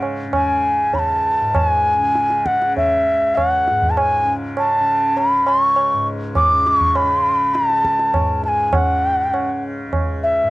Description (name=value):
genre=indian classical, Hindustani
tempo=100 BPM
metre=4/4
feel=straight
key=C# raga bhairavi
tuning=A4 = 440 Hz
part: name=breathy bright bansuri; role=melody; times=0.0-10.5 s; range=E5 to D6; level=-16 LUFS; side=equal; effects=cassette tape
part: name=tanpura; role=drone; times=0.0-10.5 s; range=C#2 to C#3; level=-26 LUFS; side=left 1 dB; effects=stereo widening, cassette tape
part: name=tabla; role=percussion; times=0.0-10.1 s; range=none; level=-23 LUFS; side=right 2 dB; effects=none
room=light reverb, small room ambience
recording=home recording on cassette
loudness=-15 LUFS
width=side -19 dB against mid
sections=0.0-10.5 A section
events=speeding up 0.0-10.5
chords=none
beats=0.33 0.94 | 1.55 2.15 2.76 3.36 | 3.96 4.57 5.17 5.77 | 6.36 6.96 7.56 8.15 | 8.75 9.34 9.93